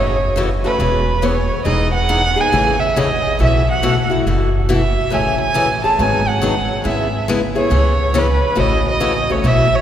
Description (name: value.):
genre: acoustic string swing (jazz manouche).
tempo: 139 BPM.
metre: 4/4.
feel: swing 63% on 8ths.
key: unclear.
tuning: A4 = 440 Hz.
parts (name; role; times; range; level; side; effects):
warm violin; melody; 0.0-9.8 s; B4 to A5; -18 LUFS; right 2 dB; none.
picked steel-string acoustic guitar; accompaniment; 0.0-9.7 s; B2 to G#4; -19 LUFS; left 2 dB; none.
upright bass; bass; 0.0-9.8 s; E1 to C#2; -19 LUFS; equal; none.
room: wet cathedral reverb, RT60 4.8 s.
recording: recorded in a church or concert hall.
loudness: -14 LUFS.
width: side -10 dB against mid.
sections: 0.0-9.8 A section.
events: none.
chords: 0.0 F#m7; 0.8 C#m7/E; 1.7 Emaj9; 2.5 Amaj7; 3.4 B7sus4; 5.1 Amaj7; 6.0 G#m7; 6.8 E6/G#; 7.7 C#m7; 8.6 A6.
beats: 0.37 0.80 1.23 | 1.67 2.10 2.53 2.96 | 3.40 3.83 4.26 4.69 | 5.12 5.56 5.99 6.42 | 6.85 7.28 7.71 8.14 | 8.57 9.01 9.44.